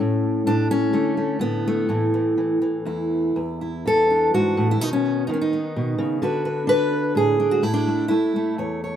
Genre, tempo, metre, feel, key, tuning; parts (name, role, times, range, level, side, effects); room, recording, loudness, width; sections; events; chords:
folk, solo fingerstyle acoustic guitar; 126 BPM; 3/4; rubato; A major; A4 = 440 Hz
fingerpicked steel-string acoustic guitar; solo; 0.0-9.0 s; E2 to C#5; -19 LUFS; equal; tape echo
light reverb; rough home demo mix; -19 LUFS; side -9 dB against mid
0.0-3.4 A section; 3.4-9.0 B section
0.5 D5/A; 1.9 A5; 3.4 E7sus4; 4.8 Badd9; 6.2 D6; 7.6 A